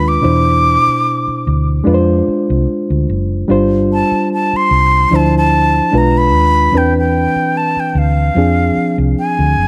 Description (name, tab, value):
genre	lush 1970s-style soul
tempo	74 BPM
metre	4/4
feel	swing 54% on 16ths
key	C major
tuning	A4 = 439 Hz
part	breathy silver concert flute	melody	0.0-9.7 s	F5 to D6	-17 LUFS	equal	none
part	reed electric piano	accompaniment	0.0-9.7 s	B2 to C5	-18 LUFS	equal	none
part	hollow-body short-scale fingered electric bass	bass	0.0-9.7 s	F#1 to F2	-17 LUFS	equal	none
room	light reverb, small room ambience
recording	dark, warm production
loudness	-13 LUFS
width	mono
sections	0.0-9.7 A section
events	none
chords	0.2 Cmaj9; 1.9 Fm6; 3.5 G7sus4; 5.1 Dm9; 5.9 Bdim7; 6.7 Cmaj9; 8.4 Fm6